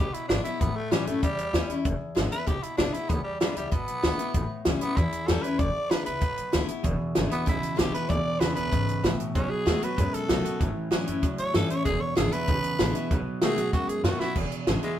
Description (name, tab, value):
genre	rockabilly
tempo	192 BPM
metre	4/4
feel	straight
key	E mixolydian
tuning	A4 = 439 Hz
part	growling tenor saxophone	melody	0.0-15.0 s	G3 to D5	-30 LUFS	right 1 dB	none
part	picked steel-string acoustic guitar	accompaniment	0.0-15.0 s	E2 to F#4	-31 LUFS	left 4 dB	none
part	upright bass	bass	0.0-14.9 s	E1 to B2	-31 LUFS	equal	none
part	compact cocktail drum kit	drums	0.1-14.9 s	crash cymbal, hi-hat, kick drum, snare drum	-27 LUFS	right 1 dB	none
part	electric guitar at the edge of break-up	riff	6.8-15.0 s	E2 to G#3	-31 LUFS	right 3 dB	none
room	light reverb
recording	band playing live in one room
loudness	-24 LUFS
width	side -11 dB against mid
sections	0.0-14.4 A section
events	tenor saxophone solo 0.0-14.4; drum fill 14.2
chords	0.0 E7; 0.6 A7; 1.9 E7; 4.3 A7; 5.6 E7; 9.4 B7; 10.6 A7; 11.9 E7; 13.1 B7; 14.4 E7